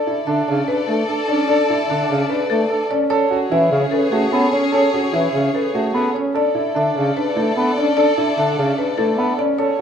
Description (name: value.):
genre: classical, minimalist pattern music.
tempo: 148 BPM.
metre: 4/4.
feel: straight.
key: B dorian.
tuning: A4 = 443 Hz.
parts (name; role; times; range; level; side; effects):
marimba with medium hard mallets; melody; 0.0-9.8 s; G#4 to E5; -21 LUFS; left 5 dB; none.
rich chamber violin section; sustained chords; 0.0-9.8 s; G#4 to D5; -25 LUFS; left 4 dB; none.
dark concert grand piano; arpeggios; 0.0-9.8 s; C#4 to B4; -22 LUFS; right 6 dB; none.
mellow French horn; second line; 0.1-9.7 s; C#4 to D4; -24 LUFS; right 2 dB; none.
warm bass clarinet; accompaniment; 0.3-9.3 s; C#3 to B3; -22 LUFS; equal; none.
room: moderate recital hall reverb, RT60 1.4 s.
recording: dark, warm production.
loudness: -16 LUFS.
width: side -8 dB against mid.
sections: 0.0-9.8 A section.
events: none.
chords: 0.0 Bm9; 3.1 Amaj9; 6.4 Bm9.